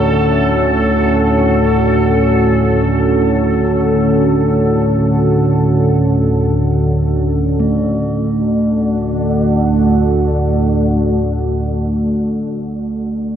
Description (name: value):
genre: dark ambient drone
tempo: free time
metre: none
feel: none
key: D major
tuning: A4 = 442 Hz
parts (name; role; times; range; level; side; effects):
- deep dark ambient pad; sustained chords; 0.0-12.0 s; D3 to F#5; -16 LUFS; right 1 dB; chorus, built-in reverb
- bronze singing bowl; arpeggios; 0.0-1.2, 7.6-11.8 s; A3; -20 LUFS; right 1 dB; ping-pong delay
- analog drone; drone; 0.0-11.8 s; D2 to A2; -16 LUFS; equal; chorus
- bubbling stepped-filter texture; texture; 0.0-7.6 s; A4; -22 LUFS; left 2 dB; chorus, built-in reverb
room: wet huge ambient reverb, RT60 8.9 s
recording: worn, warbling old tape, cassette tape, warbly pitch drift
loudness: -12 LUFS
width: side -9 dB against mid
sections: 0.0-7.6 A section; 7.6-11.3 B section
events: none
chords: 0.0 F#m/D; 7.6 D